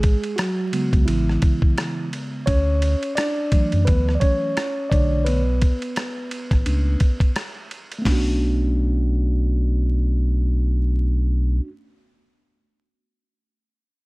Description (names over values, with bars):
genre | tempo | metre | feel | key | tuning
hip hop, jazz-hop | 86 BPM | 4/4 | swing 59% on 16ths | B dorian | A4 = 441 Hz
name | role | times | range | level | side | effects
mellow tine electric piano | accompaniment | 0.0-11.7 s | C#3 to D5 | -24 LUFS | right 1 dB | slow stereo tremolo
sub bass with octave | bass | 0.0-11.6 s | A1 to F#2 | -20 LUFS | equal | none
boom bap sampler-style drum kit | drums | 0.0-8.3 s | hi-hat, kick drum, ride cymbal, rim click, snare drum | -22 LUFS | equal | vintage 12-bit sampler grit
room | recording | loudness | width
little or no reverb | vinyl crackle | -18 LUFS | side -24 dB against mid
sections
0.0-8.1 A section; 8.1-10.8 B section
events
tine electric piano solo 0.0-8.1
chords
0.0 Amaj7; 2.5 Dmaj7; 4.9 Bm9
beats
0.38 1.08 1.77 | 2.47 3.17 3.87 4.56 | 5.26 5.96 6.66 7.36 | 8.05 8.75 9.45 10.15